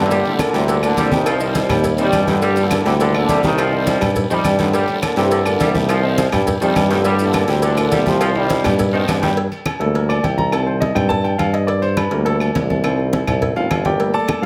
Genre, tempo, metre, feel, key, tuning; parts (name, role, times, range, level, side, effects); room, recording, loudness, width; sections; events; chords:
latin, salsa; 207 BPM; 4/4; straight; G minor; A4 = 440 Hz
mellow trombone section; melody; 0.0-8.9 s; G2 to G3; -23 LUFS; equal
clear grand piano; accompaniment; 0.0-14.5 s; Eb3 to Bb5; -24 LUFS; equal
clear tuba; bass; 0.0-14.5 s; G1 to G2; -22 LUFS; equal
bright saxophone section; second line; 0.1-9.3 s; D3 to G3; -27 LUFS; equal
congas; percussion; 0.1-14.5 s; -26 LUFS; equal
cowbell; percussion; 0.1-14.5 s; -30 LUFS; equal
guiro; percussion; 0.1-9.4 s; -35 LUFS; equal
maracas; percussion; 0.1-9.4 s; -39 LUFS; equal
timbales and agogo bells; percussion; 0.1-14.4 s; -29 LUFS; equal
claves; percussion; 0.4-14.4 s; -35 LUFS; equal
moderate large studio reverb, RT60 1.2 s; -17 LUFS; mono
0.1-9.4 A section; 9.4-14.5 B section
drum fill 8.2-9.4; grand piano solo 9.4-14.5
0.1 Gmadd9; 1.3 Cm; 2.4 Gmadd9; 3.6 Cm; 4.7 Gmadd9; 5.9 Cm; 7.1 Gmadd9; 8.2 Cm; 9.4 Gmadd9; 10.5 Cm; 11.7 Gmadd9; 12.8 Cm